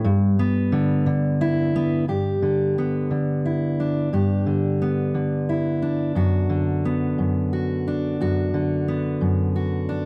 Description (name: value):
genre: folk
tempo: 59 BPM (dotted quarters)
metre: 6/8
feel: straight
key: G major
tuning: A4 = 440 Hz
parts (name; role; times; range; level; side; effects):
- fingerpicked steel-string acoustic guitar; solo; 0.0-10.1 s; F#2 to G4; -22 LUFS; equal; none
room: light reverb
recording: none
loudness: -22 LUFS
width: mono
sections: 0.0-2.1 A section; 2.1-10.1 B section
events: none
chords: 0.0 G; 6.2 Bm/F#